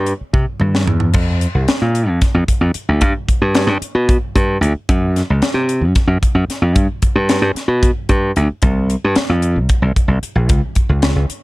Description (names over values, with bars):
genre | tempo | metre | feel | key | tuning
electric jazz fusion | 224 BPM (eighths) | 7/8 | straight | unclear | A4 = 437 Hz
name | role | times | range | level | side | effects
slap bass | bass | 0.0-11.3 s | Bb1 to C3 | -14 LUFS | equal | none
crisp fusion drum kit | drums | 0.1-11.4 s | crash cymbal, hi-hat, kick drum, snare drum, toms | -16 LUFS | equal | none
room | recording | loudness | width
little or no reverb | dark, warm production | -13 LUFS | side -21 dB against mid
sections
0.0-1.1 A section; 1.1-11.4 B section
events
drum fill 0.3-1.1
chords
none